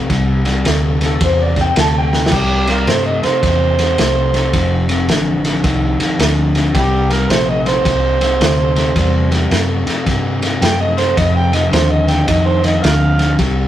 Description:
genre	electric blues shuffle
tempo	108 BPM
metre	4/4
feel	swing 64% on 8ths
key	unclear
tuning	A4 = 441 Hz
part	crunchy overdriven guitar	riff	0.0-13.7 s	F2 to Bb3	-18 LUFS	left 2 dB	none
part	vintage muted fingered electric bass	bass	0.0-13.7 s	F1 to G2	-17 LUFS	equal	none
part	crunchy breakbeat drum kit	drums	0.1-13.6 s	crash cymbal, kick drum, ride cymbal, snare drum	-18 LUFS	equal	none
part	electric slide guitar	melody	1.1-2.3 s	A4 to A5	-18 LUFS	left 2 dB	none
part	overdriven harmonica	second line	2.3-13.4 s	D4 to G5	-18 LUFS	right 3 dB	none
room	moderate stone room reverb, RT60 1.3 s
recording	rough rehearsal-room recording, tube saturation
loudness	-12 LUFS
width	side -12 dB against mid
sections	0.0-2.3 A section; 2.3-13.7 B section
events	drum fill 2.0; harmonica solo 2.3-13.7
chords	0.0 C7; 4.5 F7; 6.7 C7; 11.2 F5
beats	| 0.10 0.66 1.21 1.76 | 2.32 2.87 3.43 3.98 | 4.53 5.09 5.64 6.19 | 6.75 7.30 7.85 8.41 | 8.96 9.52 10.07 10.62 | 11.18 11.73 12.28 12.84 | 13.39

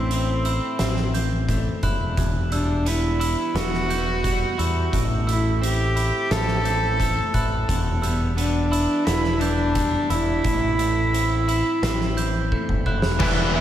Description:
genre	post-rock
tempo	87 BPM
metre	4/4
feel	straight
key	unclear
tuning	A4 = 440 Hz
part	warm cello	melody	0.0-13.6 s	B3 to A4	-24 LUFS	right 1 dB	tape echo
part	electric guitar at the edge of break-up	arpeggios	0.0-13.6 s	E2 to E4	-30 LUFS	left 2 dB	wide subtle chorus, tape echo
part	glockenspiel with soft plastic mallets	arpeggios	0.0-13.6 s	E6 to G6	-34 LUFS	right 6 dB	tape echo
part	growling picked electric bass	bass	0.0-13.6 s	E1 to E2	-24 LUFS	equal	overdrive
part	oversized low-tuned drum kit	drums	0.1-13.4 s	crash cymbal, hi-hat, kick drum, snare drum	-27 LUFS	equal	none
part	distorted electric guitar	riff	13.2-13.6 s	E3 to E4	-21 LUFS	left 1 dB	overdrive
room	moderate lush hall reverb, RT60 2.9 s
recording	dreamy mix soaked in reverb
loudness	-20 LUFS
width	side -11 dB against mid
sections	0.0-13.2 A section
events	drum fill 12.5-13.2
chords	0.0 Am; 2.2 Em; 4.9 Am; 7.7 Em; 10.4 Am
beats	0.11 0.80 1.49 | 2.17 2.86 3.55 4.24 | 4.93 5.62 6.31 7.00 | 7.69 8.38 9.06 9.75 | 10.44 11.13 11.82 12.51 | 13.20

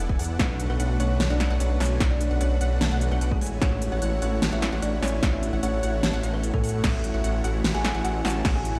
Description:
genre	future bass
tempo	149 BPM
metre	4/4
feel	half-time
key	unclear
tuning	A4 = 441 Hz
part	unison pluck	arpeggios	0.0-8.8 s	F#5 to B5	-41 LUFS	equal	sidechain pumping, delay
part	dense compressed supersaw	riff	0.0-8.8 s	A3 to B5	-34 LUFS	equal	cassette tape, sidechain pumping
part	detuned saw bass	bass	0.0-8.8 s	E1 to A2	-28 LUFS	equal	chorus, sidechain pumping
part	electronic kick drum	drums	0.1-8.5 s	none	-26 LUFS	equal	overdrive, studio reverb
part	big-room dance drum kit	drums	0.2-8.7 s	crash cymbal, hi-hat, snare drum	-31 LUFS	equal	studio reverb
part	kalimba	melody	0.4-8.8 s	G#3 to G#5	-34 LUFS	equal	sidechain pumping, tape echo
room	light reverb, digital ambience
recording	played on a big sound system in a bare room, large studio reverb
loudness	-25 LUFS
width	mono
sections	0.0-8.8 A section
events	none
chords	0.4 Bm7; 3.4 F#m7/A; 6.8 A6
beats	| 0.39 0.80 1.20 1.60 | 2.00 2.41 2.81 3.21 | 3.62 4.02 4.42 4.82 | 5.23 5.63 6.03 6.43 | 6.84 7.24 7.64 8.04 | 8.45

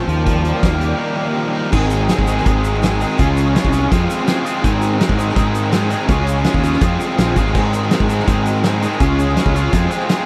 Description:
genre	indie rock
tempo	165 BPM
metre	4/4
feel	straight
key	Ab major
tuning	A4 = 440 Hz
part	distorted electric guitar	riff	0.0-10.3 s	Eb3 to Ab4	-23 LUFS	equal	overdrive
part	raw garage guitar	riff	0.0-10.3 s	Ab2 to Bb4	-23 LUFS	equal	overdrive, ensemble chorus, tape echo
part	fuzz fingered electric bass	bass	0.1-9.9 s	Ab1 to Ab2	-21 LUFS	equal	overdrive
part	loose indie drum kit	drums	0.1-10.2 s	crash cymbal, hi-hat, kick drum, snare drum	-21 LUFS	equal	none
part	tube shaker	percussion	1.7-10.2 s	none	-44 LUFS	equal	none
room	little or no reverb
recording	none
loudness	-16 LUFS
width	mono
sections	0.0-1.7 A section; 1.7-10.3 B section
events	break 1.0-1.7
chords	0.1 Ebadd9; 1.7 Ab; 3.2 Db; 3.9 Fm; 4.6 Ab; 6.1 Db; 6.8 Fm; 7.5 Ab; 9.0 Db; 9.7 Fm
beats	| 0.27 0.64 1.00 1.36 | 1.73 2.09 2.46 2.82 | 3.19 3.55 3.91 4.28 | 4.64 5.00 5.37 5.73 | 6.10 6.46 6.82 7.19 | 7.55 7.91 8.28 8.64 | 9.00 9.37 9.73 10.09

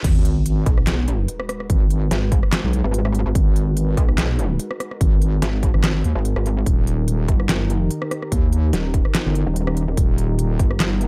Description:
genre	heavy wobble dubstep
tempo	145 BPM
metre	4/4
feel	swing 54% on 16ths, half-time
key	G# minor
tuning	A4 = 436 Hz
part	supersaw pad	sustained chords	0.0-11.1 s	D#3 to A#5	-33 LUFS	equal	sidechain pumping, low-pass filter
part	wobble bass	bass	0.0-10.6 s	D#1 to D#2	-22 LUFS	equal	chorus, overdrive
part	dubstep drum kit	drums	0.0-11.1 s	crash cymbal, handclaps, hi-hat, rim click, snare drum	-27 LUFS	equal	high-pass filter on snare, high-pass filter on hats, high-pass filter on cymbals
part	electronic kick drum	drums	0.0-10.7 s	none	-21 LUFS	equal	none
part	sub drop	sound effects	0.1-1.7 s	none	-29 LUFS	equal	none
part	pulsing pluck wobble bass	bass	0.7-11.1 s	D#1 to B1	-23 LUFS	equal	chorus, overdrive
room	digital ambience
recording	dark, warm production, high-pass filter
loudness	-20 LUFS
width	mono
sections	0.0-11.1 A section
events	drop 0.0-11.1; impact 0.0-1.7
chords	0.0 G#m7; 6.7 D#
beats	| 0.04 0.46 0.87 1.28 | 1.70 2.11 2.52 2.94 | 3.35 3.77 4.18 4.59 | 5.01 5.42 5.83 6.25 | 6.66 7.08 7.49 7.90 | 8.32 8.73 9.15 9.56 | 9.97 10.39 10.80

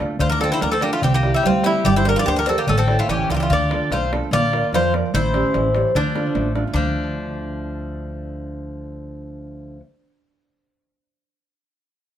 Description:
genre	greek folk, Greek bouzouki band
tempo	147 BPM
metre	2/4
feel	straight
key	D minor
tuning	A4 = 438 Hz
part	nylon-string guitar	accompaniment	0.0-9.9 s	C3 to D5	-24 LUFS	right 5 dB	none
part	upright bass	bass	0.0-9.8 s	G1 to F2	-24 LUFS	equal	none
part	darbuka	percussion	0.0-6.9 s	none	-26 LUFS	left 2 dB	none
part	Greek bouzouki	melody	0.2-9.8 s	D4 to D5	-22 LUFS	left 1 dB	tape echo
part	Greek bouzouki	second line	0.2-9.8 s	F3 to G4	-26 LUFS	left 5 dB	none
room	moderate studio ambience, RT60 0.5 s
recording	none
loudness	-17 LUFS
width	side -10 dB against mid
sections	0.2-6.7 A section; 6.7-8.3 B section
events	speeding up 0.0-8.3; drum fill 3.2-3.5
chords	0.2 Dm; 1.0 C; 1.9 Gm; 2.7 A; 3.5 Dm; 4.3 Bb; 5.1 A7; 5.9 Dm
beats	| 0.20 0.61 | 1.03 1.45 | 1.86 2.27 | 2.68 3.09 | 3.50 3.91 | 4.32 4.73 | 5.13 5.54 | 5.94 6.34 | 6.74 7.14 | 7.54 7.94

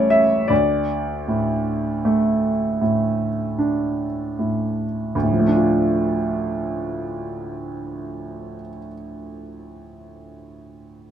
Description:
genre	classical, romantic nocturne for solo piano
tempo	26 BPM (dotted quarters)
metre	12/8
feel	rubato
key	D minor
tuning	A4 = 440 Hz
part	warm baby grand piano	solo	0.0-11.1 s	A1 to E5	-20 LUFS	right 1 dB	none
room	light reverb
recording	minimal, uncompressed stereo recording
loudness	-19 LUFS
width	side -9 dB against mid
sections	0.0-5.1 A section; 5.1-11.1 B section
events	slowing down 0.0-5.1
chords	0.5 D5; 5.1 Dm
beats	0.49 2.81 | 5.14 7.35 9.58

